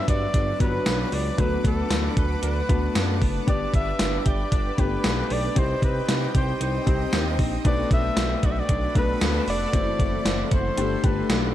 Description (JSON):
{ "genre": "1980s-style pop", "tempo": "115 BPM", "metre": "4/4", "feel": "straight", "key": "G major", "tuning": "A4 = 441 Hz", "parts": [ { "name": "warm flugelhorn", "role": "melody", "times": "0.0-11.5 s", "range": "A4 to E5", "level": "-29 LUFS", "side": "left 1 dB", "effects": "none" }, { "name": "warm concert grand piano", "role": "accompaniment", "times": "0.0-11.5 s", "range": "F#3 to C5", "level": "-29 LUFS", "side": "left 5 dB", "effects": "none" }, { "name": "shimmering ambient pad", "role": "sustained chords", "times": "0.0-11.5 s", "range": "C4 to Eb6", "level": "-34 LUFS", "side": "right 2 dB", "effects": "chorus, built-in reverb" }, { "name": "direct-recorded clean electric guitar", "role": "riff", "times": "0.0-11.5 s", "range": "E3 to A4", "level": "-34 LUFS", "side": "right 5 dB", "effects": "ensemble chorus" }, { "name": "smooth synth bass", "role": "bass", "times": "0.1-11.5 s", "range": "F1 to F#2", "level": "-27 LUFS", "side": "equal", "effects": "none" }, { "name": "gated 80s digital drum machine", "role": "drums", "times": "0.1-11.4 s", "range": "hi-hat, kick drum, snare drum, tambourine", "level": "-24 LUFS", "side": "equal", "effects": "gated reverb, gated reverb snare, overdrive" } ], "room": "light reverb", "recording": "dark, warm production", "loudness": "-21 LUFS", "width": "side -12 dB against mid", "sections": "0.0-11.5 A section", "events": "none", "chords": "0.0 Gmaj7; 1.4 D6; 3.5 G; 5.6 Cm; 7.6 Bm7; 9.7 F#m7b5; 10.8 Gsus2", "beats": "0.34 0.86 | 1.39 1.91 2.43 2.95 | 3.47 4.00 4.52 5.04 | 5.56 6.08 6.60 7.12 | 7.65 8.17 8.69 9.21 | 9.73 10.26 10.78 11.30" }